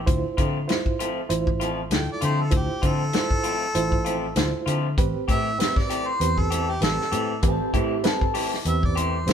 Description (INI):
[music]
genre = straight-eighth soul blues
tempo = 98 BPM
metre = 4/4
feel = swing 56% on 16ths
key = A minor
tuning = A4 = 435 Hz
[part]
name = warm harmonica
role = melody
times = 0.0-9.3 s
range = G4 to G5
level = -27 LUFS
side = equal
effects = none
[part]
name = bright reed electric piano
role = accompaniment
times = 0.0-9.3 s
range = C4 to C5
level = -29 LUFS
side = right 5 dB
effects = fast tremolo
[part]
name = vintage muted fingered electric bass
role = bass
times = 0.0-9.3 s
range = A1 to D3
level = -27 LUFS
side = left 1 dB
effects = none
[part]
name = warm soul drum kit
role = drums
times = 0.1-9.3 s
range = hi-hat, kick drum, snare drum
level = -24 LUFS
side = left 1 dB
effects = none
[part]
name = electric guitar through a small old amp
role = stabs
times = 0.4-9.2 s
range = E3 to G4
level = -30 LUFS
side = left 3 dB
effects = none
[part]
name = electric guitar through a small old amp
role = second line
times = 7.4-8.5 s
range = C4 to A4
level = -27 LUFS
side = right 1 dB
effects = none
[sound]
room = light reverb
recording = band playing live in one room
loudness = -21 LUFS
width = side -8 dB against mid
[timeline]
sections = 0.0-9.3 A section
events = none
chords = 0.1 Dm7; 5.0 Am7